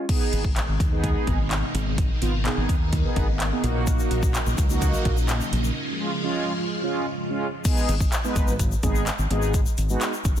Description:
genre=dance-pop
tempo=127 BPM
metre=4/4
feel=straight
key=G# dorian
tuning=A4 = 440 Hz
part: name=mellow synth brass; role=accompaniment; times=0.0-10.4 s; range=G#3 to B4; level=-28 LUFS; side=right 2 dB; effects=chorus, sidechain pumping
part: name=string machine, full ensemble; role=sustained chords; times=0.1-7.6 s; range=B2 to E#4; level=-30 LUFS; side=equal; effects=phaser, ensemble chorus, sidechain pumping
part: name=pop drum kit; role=drums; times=0.1-10.4 s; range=crash cymbal, handclaps, hi-hat, kick drum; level=-24 LUFS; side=equal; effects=none
part: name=fingered electric bass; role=bass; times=0.3-10.4 s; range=G#1 to D#2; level=-25 LUFS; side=equal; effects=sidechain pumping
part: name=tube shaker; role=percussion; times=3.9-10.4 s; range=none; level=-37 LUFS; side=left 10 dB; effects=none
room=light reverb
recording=dense, heavily limited modern master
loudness=-21 LUFS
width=side -10 dB against mid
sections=0.1-7.7 A section; 7.7-10.4 B section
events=break 5.8-7.7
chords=0.1 G#m; 3.6 F#6/A#; 5.8 C#; 7.7 G#m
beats=| 0.09 0.56 1.04 1.51 | 1.98 2.46 2.93 3.40 | 3.87 4.34 4.82 5.29 | 5.76 6.24 6.71 7.18 | 7.65 8.12 8.60 9.07 | 9.54 10.01

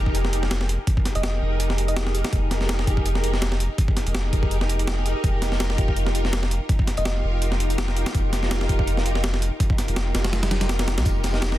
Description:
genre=drum and bass, jungle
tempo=165 BPM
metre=4/4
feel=swing 54% on 16ths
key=F minor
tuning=A4 = 440 Hz
part: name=soft string machine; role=sustained chords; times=0.0-11.6 s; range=Eb4 to Bb4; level=-28 LUFS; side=equal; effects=ensemble chorus, vintage 12-bit sampler grit
part: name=saturated sub bass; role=bass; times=0.0-11.6 s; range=F1 to C2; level=-24 LUFS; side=equal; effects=none
part: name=breakbeat sampler-style drum kit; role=drums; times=0.1-11.6 s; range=hi-hat, kick drum, snare drum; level=-24 LUFS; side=equal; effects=none
part: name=thumb-piano-like synth pluck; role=melody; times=1.2-2.4, 7.0-7.1 s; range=Eb5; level=-33 LUFS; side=right 1 dB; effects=chorus, dub echo
part: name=tambourine and snare drum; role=drums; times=11.1-11.5 s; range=none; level=-38 LUFS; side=left 4 dB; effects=high-pass filter on hats, high-pass filter on snare, high-pass filter on perc, high-pass filter on room
room=light reverb, studio reverb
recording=dense, heavily limited modern master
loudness=-20 LUFS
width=side -14 dB against mid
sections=0.0-11.6 A section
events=none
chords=0.0 Fm11; 5.2 Ebadd9/F; 11.1 Fm11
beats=0.15 0.51 | 0.87 1.24 1.60 1.96 | 2.33 2.69 3.06 3.42 | 3.78 4.15 4.51 4.87 | 5.24 5.60 5.96 6.33 | 6.69 7.05 7.42 7.78 | 8.15 8.51 8.87 9.24 | 9.60 9.96 10.33 10.69 | 11.05 11.42

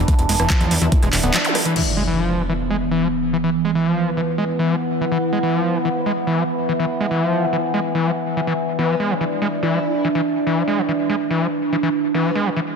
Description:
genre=psychedelic trance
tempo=143 BPM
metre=4/4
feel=straight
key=unclear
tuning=A4 = 440 Hz
part: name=overtone-sweeping drone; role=sustained chords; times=0.0-12.8 s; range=E3 to D4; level=-21 LUFS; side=right 2 dB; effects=chorus, built-in reverb, sidechain pumping
part: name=plucky analog bass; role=bass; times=0.0-1.3 s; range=D1 to E2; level=-20 LUFS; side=equal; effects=none
part: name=screaming distorted acid line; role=riff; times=0.1-12.6 s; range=E3 to B3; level=-22 LUFS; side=left 1 dB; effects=distortion, chorus, auto-pan, sidechain pumping, tape echo
part: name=electronic kick drum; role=drums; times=0.1-1.0 s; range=none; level=-16 LUFS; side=equal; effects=overdrive
part: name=garage drum kit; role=drums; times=0.1-1.8 s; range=crash cymbal, handclaps, hi-hat, rim click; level=-22 LUFS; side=equal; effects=overdrive
part: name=formant-sweep wobble bass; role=second line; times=0.8-1.0, 8.8-12.5 s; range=B3 to E4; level=-29 LUFS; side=left 5 dB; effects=analog chorus, sidechain pumping, high-pass filter, digital delay
part: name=zap and impact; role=sound effects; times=1.4-3.4 s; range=none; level=-25 LUFS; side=equal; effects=none
room=moderate lush hall reverb, RT60 1.5 s, digital ambience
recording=dense, heavily limited modern master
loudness=-17 LUFS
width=side -5 dB against mid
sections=0.0-1.8 A section; 1.8-12.8 B section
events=drop 0.0-1.8; band accent 1.3; impact 1.8-3.4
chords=0.0 E5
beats=| 0.08 0.50 0.92 1.34 | 1.76 2.18 2.60 3.02 | 3.44 3.86 4.28 4.70 | 5.12 5.54 5.96 6.38 | 6.79 7.21 7.63 8.05 | 8.47 8.89 9.31 9.73 | 10.15 10.57 10.99 11.41 | 11.83 12.25 12.67

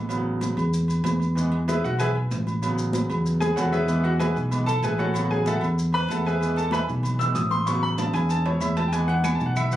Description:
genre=latin, salsa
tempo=190 BPM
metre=4/4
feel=straight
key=unclear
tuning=A4 = 442 Hz
part: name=bright grand piano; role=accompaniment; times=0.0-9.8 s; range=C#3 to E6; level=-25 LUFS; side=equal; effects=none
part: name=fingered electric bass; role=bass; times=0.0-9.8 s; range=A1 to E2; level=-25 LUFS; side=equal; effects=none
part: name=agogo bells and timbales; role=percussion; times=0.1-9.8 s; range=none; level=-33 LUFS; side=right 3 dB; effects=none
part: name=congas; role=percussion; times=0.1-9.8 s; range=none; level=-32 LUFS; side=equal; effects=none
part: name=maracas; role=percussion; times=0.1-9.8 s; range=none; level=-41 LUFS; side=left 4 dB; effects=none
part: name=claves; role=percussion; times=9.2-9.7 s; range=none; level=-34 LUFS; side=right 1 dB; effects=none
room=moderate small room ambience, RT60 0.5 s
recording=recorded on a phone in the room, club reverb, compression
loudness=-21 LUFS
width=side -13 dB against mid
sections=0.0-9.8 A section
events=grand piano solo 0.0-9.8; drum fill 3.4-3.9, 8.0-8.9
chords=0.1 A6; 1.4 E; 2.6 A6; 6.4 E; 7.7 A6; 8.9 E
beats=| 0.11 0.42 0.74 1.05 | 1.37 1.68 2.00 2.31 | 2.63 2.94 3.26 3.58 | 3.89 4.21 4.52 4.84 | 5.15 5.47 5.78 6.10 | 6.42 6.73 7.05 7.36 | 7.68 7.99 8.31 8.62 | 8.94 9.26 9.57

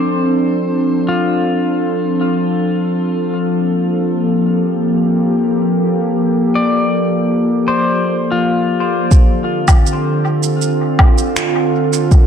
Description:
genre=ambient dub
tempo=80 BPM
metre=4/4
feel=straight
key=D minor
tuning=A4 = 444 Hz
part: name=warbly tape-like pad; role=sustained chords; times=0.0-12.3 s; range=D3 to A4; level=-14 LUFS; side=equal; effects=chorus, built-in reverb
part: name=pedal steel guitar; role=arpeggios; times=0.0-10.6 s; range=F4 to D5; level=-21 LUFS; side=left 2 dB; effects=vintage 12-bit sampler grit, low-pass filter, tape echo
part: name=electronic kick drum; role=drums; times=9.1-12.3 s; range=none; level=-9 LUFS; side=equal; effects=none
part: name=electronic shaker, woodblock and finger snaps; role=drums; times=9.1-12.3 s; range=none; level=-19 LUFS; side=equal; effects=low-pass filter on perc, low-pass filter on snare, low-pass filter on room, dub echo
room=moderate echo chamber reverb, RT60 2.6 s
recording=dark, warm production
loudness=-13 LUFS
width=side -8 dB against mid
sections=0.0-9.1 A section; 9.1-12.3 B section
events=none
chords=0.0 Dm7; 3.1 Gm9; 9.1 Dm7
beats=| 0.11 0.86 1.61 2.36 | 3.11 3.86 4.61 5.36 | 6.11 6.86 7.61 8.36 | 9.11 9.86 10.61 11.36 | 12.11

